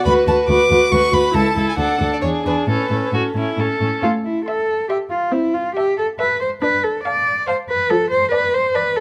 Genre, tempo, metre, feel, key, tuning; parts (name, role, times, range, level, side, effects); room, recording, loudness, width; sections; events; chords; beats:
quick classical-period movement for string quartet; 140 BPM; 3/4; rubato; A major, A minor from 4.0 s; A4 = 440 Hz
warm violin; melody; 0.0-9.0 s; A4 to D6; -24 LUFS; equal
rich violin; second line; 0.0-9.0 s; E4 to F5; -23 LUFS; equal
rich viola; accompaniment; 0.0-8.2 s; F3 to F#4; -24 LUFS; equal
warm cello; bass; 0.1-9.0 s; C#2 to D5; -21 LUFS; equal
light reverb; close, detailed microphones; -18 LUFS; mono
0.0-4.0 A section; 4.0-9.0 B section
0.1 Bm/D; 1.3 A/C#; 1.8 D; 2.2 E7; 2.7 A; 4.0 Am; 5.3 Am/C; 6.6 Dm; 7.9 Dm/F
| 0.06 0.49 0.92 | 1.34 1.78 2.23 | 2.68 3.13 3.59 | 4.04 4.47 4.90 | 5.33 5.77 6.20 | 6.62 7.05 7.48 | 7.90 8.32 8.74